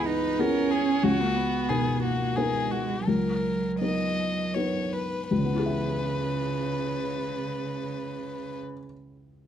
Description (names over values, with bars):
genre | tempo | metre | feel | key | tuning
neoclassical piano and strings | 78-94 BPM | 3/4 | rubato | C# dorian | A4 = 441 Hz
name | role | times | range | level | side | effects
warm violin | melody | 0.0-8.6 s | F#4 to D#5 | -30 LUFS | left 4 dB | none
dark cello | second line | 0.0-8.6 s | C#3 to D#4 | -30 LUFS | right 7 dB | none
felt-muted upright piano | accompaniment | 0.0-9.5 s | C#2 to E5 | -28 LUFS | left 2 dB | none
room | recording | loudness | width
moderate large studio reverb, RT60 0.8 s | dark, warm production | -25 LUFS | side -9 dB against mid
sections
0.0-5.3 A section; 5.3-9.5 B section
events
slowing down 0.1-5.3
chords
0.0 C#m7; 1.0 Bmaj7/C#; 5.3 C#m7